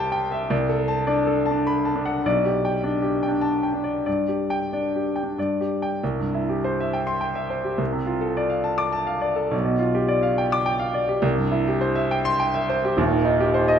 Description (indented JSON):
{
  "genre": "classical, romantic character piece for solo piano",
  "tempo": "91-107 BPM",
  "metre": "3/4",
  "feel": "rubato",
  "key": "C major",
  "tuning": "A4 = 441 Hz",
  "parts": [
    { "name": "clear grand piano", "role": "solo", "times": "0.0-13.8 s", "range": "Eb1 to D6", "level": "-20 LUFS", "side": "equal", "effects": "none" }
  ],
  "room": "moderate recital hall reverb, RT60 1.5 s",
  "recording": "none",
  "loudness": "-20 LUFS",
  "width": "side -8 dB against mid",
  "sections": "0.0-6.0 A section; 6.0-13.8 B section",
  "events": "none",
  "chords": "0.0 C; 0.5 D7(no3)/C; 2.2 G/B; 4.1 G5; 6.0 C; 7.8 Dm7/C; 9.5 G7/B; 11.2 C; 13.0 Cm/Eb"
}